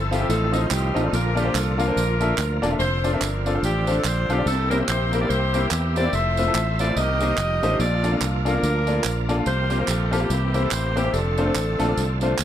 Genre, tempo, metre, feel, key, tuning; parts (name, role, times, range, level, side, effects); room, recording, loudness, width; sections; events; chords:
uptempo gospel; 144 BPM; 4/4; swing 58% on 8ths; F major; A4 = 440 Hz
bright saxophone section; melody; 0.0-12.4 s; Bb3 to E5; -26 LUFS; equal
bright tonewheel organ; sustained chords; 0.0-12.4 s; D3 to A4; -30 LUFS; right 2 dB; slow rotary speaker, overdrive, chorus vibrato
fingered electric bass; bass; 0.0-12.4 s; E1 to E2; -24 LUFS; equal
bright grand piano; accompaniment; 0.1-12.3 s; A2 to F5; -25 LUFS; left 2 dB
tambourine and handclaps; percussion; 0.1-12.4 s; -31 LUFS; right 8 dB
light reverb, small room ambience; dark, warm production; -19 LUFS; side -10 dB against mid
0.0-12.4 A section
0.3 F7/A; 1.1 Bbmaj7; 2.8 F6; 4.5 C7; 6.1 Fmaj7; 7.0 Cm7; 7.4 F9; 7.8 Bbmaj7; 9.5 C7sus4; 10.3 C7; 11.1 F6